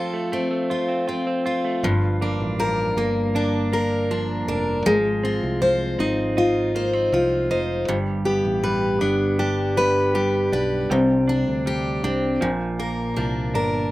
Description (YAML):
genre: acoustic pop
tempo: 79 BPM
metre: 4/4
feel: straight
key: unclear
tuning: A4 = 440 Hz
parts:
  - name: picked steel-string acoustic guitar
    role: accompaniment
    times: 0.0-13.9 s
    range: G2 to C5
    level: -21 LUFS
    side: left 1 dB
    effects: none
  - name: direct-recorded clean electric guitar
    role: arpeggios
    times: 0.0-13.9 s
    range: F3 to F4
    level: -28 LUFS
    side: right 5 dB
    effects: none
  - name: fingered electric bass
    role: bass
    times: 1.8-13.9 s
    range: F1 to D2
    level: -28 LUFS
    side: equal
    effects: none
room: little or no reverb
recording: recorded outdoors, with no room sound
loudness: -20 LUFS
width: side -17 dB against mid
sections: 0.0-1.8 A section; 1.8-13.9 B section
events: none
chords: 0.0 F; 1.8 Gm7; 4.9 Ab6; 7.9 G; 10.9 Csus2; 12.4 Bb